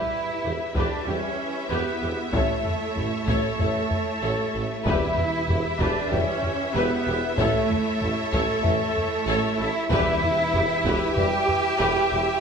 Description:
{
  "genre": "cinematic, epic orchestral film score",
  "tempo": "95 BPM",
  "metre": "4/4",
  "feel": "straight",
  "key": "E dorian",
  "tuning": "A4 = 440 Hz",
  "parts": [
    { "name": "rich symphonic violin section", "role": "melody", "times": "0.0-12.4 s", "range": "E5", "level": "-34 LUFS", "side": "left 5 dB", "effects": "none" },
    { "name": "rich symphonic violin section", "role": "second line", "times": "0.0-12.2 s", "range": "E4 to C#5", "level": "-33 LUFS", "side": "left 5 dB", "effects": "none" },
    { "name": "small flute group", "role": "second line", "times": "0.0-12.4 s", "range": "A4 to G5", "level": "-30 LUFS", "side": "right 2 dB", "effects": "none" },
    { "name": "rich symphonic viola section", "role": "accompaniment", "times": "0.0-12.2 s", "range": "G4 to A4", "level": "-32 LUFS", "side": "equal", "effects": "none" },
    { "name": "mellow French horn section", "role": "sustained chords", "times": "0.0-11.4 s", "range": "B4 to E5", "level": "-32 LUFS", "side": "left 4 dB", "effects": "none" },
    { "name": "rich symphonic string section", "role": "sustained chords", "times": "0.0-12.4 s", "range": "E4 to E5", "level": "-31 LUFS", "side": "equal", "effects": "none" },
    { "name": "rich symphonic cello section", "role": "bass", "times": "0.0-12.4 s", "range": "A3 to G4", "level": "-28 LUFS", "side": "right 3 dB", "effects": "none" },
    { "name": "clear tuba", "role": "bass", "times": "0.4-12.2 s", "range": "E1 to A1", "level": "-33 LUFS", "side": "right 3 dB", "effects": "none" },
    { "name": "rich studio double bass section", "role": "bass", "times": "0.4-12.2 s", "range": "E1 to E2", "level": "-33 LUFS", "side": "right 3 dB", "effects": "none" },
    { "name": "taiko ensemble", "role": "drums", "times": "0.7-11.8 s", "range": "none", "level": "-28 LUFS", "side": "left 1 dB", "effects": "none" },
    { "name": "clear trombone section", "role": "sustained chords", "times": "1.1-11.4 s", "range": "E3 to A3", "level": "-35 LUFS", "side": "right 2 dB", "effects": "none" },
    { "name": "timpani", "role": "percussion", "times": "4.9-5.8, 9.9-10.8 s", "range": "E2", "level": "-34 LUFS", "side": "left 2 dB", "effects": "none" }
  ],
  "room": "wet scoring stage reverb, RT60 1.5 s",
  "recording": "none",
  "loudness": "-21 LUFS",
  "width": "side -6 dB against mid",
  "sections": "0.0-12.4 A section",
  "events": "none",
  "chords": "0.0 Em; 2.3 A; 4.9 Em; 7.4 A; 9.9 Em",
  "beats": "0.43 1.06 1.70 | 2.33 2.96 3.59 4.22 | 4.86 5.49 6.12 6.75 | 7.38 8.01 8.64 9.28 | 9.91 10.54 11.17 11.80"
}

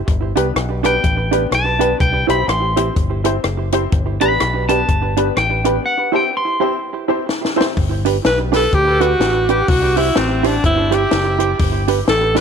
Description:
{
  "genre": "ska",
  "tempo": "125 BPM",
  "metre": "4/4",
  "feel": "swing 59% on 8ths",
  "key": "G major",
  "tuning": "A4 = 439 Hz",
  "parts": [
    { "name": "fingered electric bass", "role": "bass", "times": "0.1-12.4 s", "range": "F#1 to D2", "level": "-21 LUFS", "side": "left 1 dB", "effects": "none" },
    { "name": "compact cocktail drum kit", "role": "drums", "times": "0.1-12.4 s", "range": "hi-hat, kick drum, rim click, snare drum", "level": "-20 LUFS", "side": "left 2 dB", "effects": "none" },
    { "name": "hollow-body jazz guitar", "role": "accompaniment", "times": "0.4-12.4 s", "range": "D4 to C5", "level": "-21 LUFS", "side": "right 12 dB", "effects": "tape echo" },
    { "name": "warm upright piano", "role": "stabs", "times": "0.4-7.7 s", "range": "B3 to C5", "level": "-23 LUFS", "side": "left 13 dB", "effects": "none" },
    { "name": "electric guitar at the edge of break-up", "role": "melody", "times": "0.9-7.6 s", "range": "F#5 to C6", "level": "-19 LUFS", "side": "left 1 dB", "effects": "none" },
    { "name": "bright alto saxophone", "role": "melody", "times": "8.3-12.4 s", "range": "C4 to B4", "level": "-16 LUFS", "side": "equal", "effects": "tape echo" }
  ],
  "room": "light reverb, small room ambience",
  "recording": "1960s-style stereo with parts hard left and right",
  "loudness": "-14 LUFS",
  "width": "side -6 dB against mid",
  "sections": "0.0-7.8 A section; 7.8-12.4 B section",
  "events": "drum fill 7.3-7.8; alto saxophone solo 7.8-12.4",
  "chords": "0.1 G; 2.0 C; 3.9 G; 5.8 C; 7.8 G; 9.7 C; 11.6 G",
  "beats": "| 0.08 0.56 1.04 1.52 | 2.00 2.49 2.97 3.45 | 3.93 4.41 4.89 5.37 | 5.85 6.33 6.81 7.29 | 7.77 8.25 8.73 9.21 | 9.69 10.16 10.64 11.12 | 11.60 12.08"
}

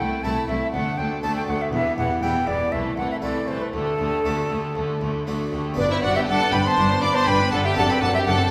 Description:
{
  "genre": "classical, baroque-style concerto movement with solo episodes",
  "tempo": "120 BPM",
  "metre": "4/4",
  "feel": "straight",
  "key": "G major",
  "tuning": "A4 = 440 Hz",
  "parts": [
    { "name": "bright concert flute", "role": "melody", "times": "0.0-8.5 s", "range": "A4 to B5", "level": "-27 LUFS", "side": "equal", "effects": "none" },
    { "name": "warm studio violin section", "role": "melody", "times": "0.0-8.5 s", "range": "E4 to D6", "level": "-31 LUFS", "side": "equal", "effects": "none" },
    { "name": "rich chamber violin section", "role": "second line", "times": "0.0-8.5 s", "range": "A3 to D5", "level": "-31 LUFS", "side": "equal", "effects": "none" },
    { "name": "harpsichord", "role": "accompaniment", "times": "0.0-8.5 s", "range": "C2 to A4", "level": "-32 LUFS", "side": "equal", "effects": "none" },
    { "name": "warm chamber viola section", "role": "accompaniment", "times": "0.0-8.5 s", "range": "D3 to D4", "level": "-32 LUFS", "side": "equal", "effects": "none" },
    { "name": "rich chamber double bass section", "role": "bass", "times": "0.0-8.4 s", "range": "E1 to D2", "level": "-32 LUFS", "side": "equal", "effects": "none" },
    { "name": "warm chamber cello section", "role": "bass", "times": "0.0-8.4 s", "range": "C2 to G2", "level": "-33 LUFS", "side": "equal", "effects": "none" }
  ],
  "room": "wet recital hall reverb, RT60 1.7 s",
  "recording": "recorded in a church or concert hall",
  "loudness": "-22 LUFS",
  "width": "mono",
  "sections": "0.0-5.8 A section; 5.8-8.5 B section",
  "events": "none",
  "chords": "0.0 Am/C; 0.7 D5; 1.7 Em; 2.7 Am/C; 3.7 Dsus4; 4.8 D; 5.8 G; 7.8 D7/F#",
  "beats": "0.24 0.74 1.23 | 1.73 2.23 2.73 3.24 | 3.74 4.25 4.76 5.27 | 5.78 6.28 6.78 7.28 | 7.78 8.28"
}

